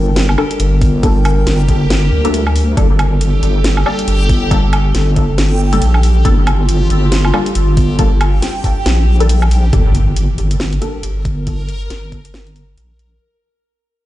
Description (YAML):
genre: deep dubstep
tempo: 138 BPM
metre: 4/4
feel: swing 58% on 16ths, half-time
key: G minor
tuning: A4 = 439 Hz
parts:
  - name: dark analog pad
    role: sustained chords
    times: 0.0-9.7 s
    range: G3 to Bb4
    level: -22 LUFS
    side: equal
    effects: lush chorus
  - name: deep soft wobble bass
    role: bass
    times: 0.0-13.2 s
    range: G1 to D2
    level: -13 LUFS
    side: equal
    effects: chorus
  - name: backwards swelling texture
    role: texture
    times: 0.0-13.2 s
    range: G4 to Bb4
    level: -25 LUFS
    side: right 1 dB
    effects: built-in reverb
  - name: garage drum kit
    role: drums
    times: 0.2-13.1 s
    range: hi-hat, snare drum, woodblock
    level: -21 LUFS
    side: equal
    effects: none
  - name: filtered dub chord stab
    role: stabs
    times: 0.4-11.0 s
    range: G3 to A4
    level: -22 LUFS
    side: left 3 dB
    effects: phaser, analog chorus, dub echo
  - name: electronic kick drum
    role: drums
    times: 0.8-12.2 s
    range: none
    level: -14 LUFS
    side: equal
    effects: overdrive
  - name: impact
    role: sound effects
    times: 9.7-11.5 s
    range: none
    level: -20 LUFS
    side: equal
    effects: none
room: little or no reverb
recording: played on a big sound system in a bare room, stone room reverb, nothing above 10.8 kHz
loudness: -11 LUFS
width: side -15 dB against mid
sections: 0.0-9.7 A section; 9.7-13.2 B section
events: drop 0.0-9.7; fade-out 9.7-13.2; impact 9.7-11.5; filter sweep on wobble bass 9.7-13.2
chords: 0.0 Gmadd9; 9.7 Gm